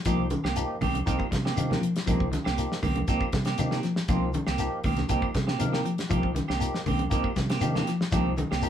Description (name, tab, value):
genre	afrobeat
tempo	119 BPM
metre	4/4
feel	straight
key	C minor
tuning	A4 = 440 Hz
part	damped 70s drum kit	drums	0.0-8.7 s	hi-hat, kick drum, snare drum	-31 LUFS	equal	none
part	barky tine electric piano	accompaniment	0.1-8.7 s	F3 to Bb4	-33 LUFS	left 2 dB	overdrive, phaser
part	semi-hollow electric guitar	arpeggios	0.1-8.6 s	Eb3 to G3	-31 LUFS	left 4 dB	spring reverb
part	semi-hollow electric guitar	stabs	0.1-8.7 s	Eb3 to G4	-32 LUFS	right 5 dB	none
part	fingered electric bass	bass	0.1-8.7 s	C2 to C3	-32 LUFS	equal	none
part	claves	percussion	0.1-8.6 s	none	-46 LUFS	right 1 dB	none
part	congas	percussion	0.1-8.7 s	none	-34 LUFS	right 1 dB	none
part	shekere	percussion	0.1-8.7 s	none	-36 LUFS	left 2 dB	none
room	moderate small room reverb, RT60 0.5 s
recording	band playing live in one room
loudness	-24 LUFS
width	side -9 dB against mid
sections	0.0-8.7 A section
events	none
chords	0.0 Cm7